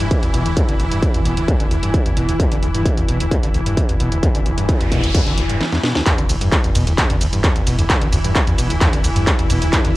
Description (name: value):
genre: driving peak-time techno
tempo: 131 BPM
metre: 4/4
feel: straight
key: E minor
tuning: A4 = 439 Hz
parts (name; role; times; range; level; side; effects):
- screaming distorted acid line; riff; 0.0-9.9 s; D2 to E3; -22 LUFS; equal; distortion, chorus, sidechain pumping, cassette tape, analog delay
- saturated sub bass; bass; 0.0-9.9 s; E1; -23 LUFS; equal; tube saturation, sidechain pumping, low-pass filter
- swarming drone; drone; 0.0-10.0 s; E3 to E4; -25 LUFS; equal; built-in reverb, sidechain pumping, cassette tape
- techno drum kit; drums; 0.0-9.9 s; handclaps, hi-hat, ride cymbal, shaker, snare drum, toms; -21 LUFS; equal; overdrive, sidechain pumping on hats, cassette tape, sidechain pumping on toms, sidechain pumping on perc, sidechain pumping on cymbals
- electronic kick drum; drums; 0.1-9.8 s; none; -17 LUFS; equal; distortion, cassette tape
- noise sweep; sound effects; 4.4-6.1 s; none; -27 LUFS; equal; none
room: light reverb, digital ambience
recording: home recording on cassette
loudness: -15 LUFS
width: side -18 dB against mid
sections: 0.0-6.1 A section; 6.1-10.0 B section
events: noise sweep 4.4-6.1; drum fill 5.6-6.1; drop 6.1-10.0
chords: 0.0 E5